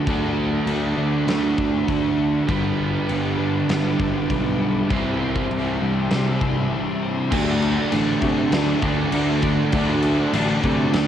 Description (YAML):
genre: rock, shoegaze and dream pop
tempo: 99 BPM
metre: 4/4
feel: straight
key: D mixolydian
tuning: A4 = 441 Hz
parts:
  - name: soft string machine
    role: sustained chords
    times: 0.0-11.1 s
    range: F#4 to D6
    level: -33 LUFS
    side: left 1 dB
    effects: ensemble chorus, cassette tape
  - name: twelve-string electric guitar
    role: arpeggios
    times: 0.0-11.1 s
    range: E3 to D4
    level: -34 LUFS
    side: left 8 dB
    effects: none
  - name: overdriven electric guitar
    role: riff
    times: 0.0-11.1 s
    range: C3 to C5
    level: -24 LUFS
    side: right 8 dB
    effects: reverse reverb, cassette tape
  - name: thick fuzz guitar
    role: riff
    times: 0.0-11.1 s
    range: G2 to D4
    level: -25 LUFS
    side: left 7 dB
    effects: distortion, analog chorus, cassette tape
  - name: fuzz picked electric bass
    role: bass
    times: 0.1-11.1 s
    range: G1 to C3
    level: -25 LUFS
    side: equal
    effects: overdrive
  - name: huge arena drum kit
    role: drums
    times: 0.1-11.1 s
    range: crash cymbal, kick drum, snare drum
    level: -27 LUFS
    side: equal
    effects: cassette tape
  - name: crunchy overdriven guitar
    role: riff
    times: 7.3-11.1 s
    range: D3 to D4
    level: -26 LUFS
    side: equal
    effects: cassette tape
room: little or no reverb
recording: home recording on cassette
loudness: -19 LUFS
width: side -9 dB against mid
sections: 0.0-7.3 A section; 7.3-11.1 B section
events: break 6.7-7.3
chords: 0.0 D; 2.5 Gadd9; 4.9 Cadd9; 7.3 D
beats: | 0.07 0.67 1.28 1.88 | 2.49 3.09 3.69 4.30 | 4.90 5.51 6.11 6.72 | 7.32 7.92 8.53 9.13 | 9.73 10.34 10.94